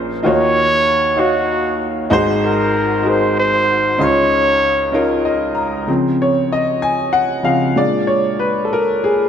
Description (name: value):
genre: gospel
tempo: 64 BPM (dotted quarters)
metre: 6/8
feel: straight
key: Db major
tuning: A4 = 439 Hz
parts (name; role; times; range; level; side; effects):
- warm grand piano; accompaniment; 0.0-9.3 s; Ab1 to C6; -15 LUFS; left 1 dB; none
- breathy trumpet; melody; 0.3-5.3 s; Gb4 to Db5; -16 LUFS; right 1 dB; none
room: moderate scoring stage reverb, RT60 2.1 s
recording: none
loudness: -13 LUFS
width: side -8 dB against mid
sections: 0.0-5.9 A section; 5.9-9.3 B section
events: grand piano fill 4.9-5.9; grand piano solo 5.9-9.3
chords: 0.2 Ebm9; 2.1 Ab7; 4.0 Dbmaj9; 5.9 Dbmaj7; 7.8 Bb7#9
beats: | 0.24 1.18 | 2.11 3.05 | 3.99 4.93 | 5.88 6.82 | 7.76 8.71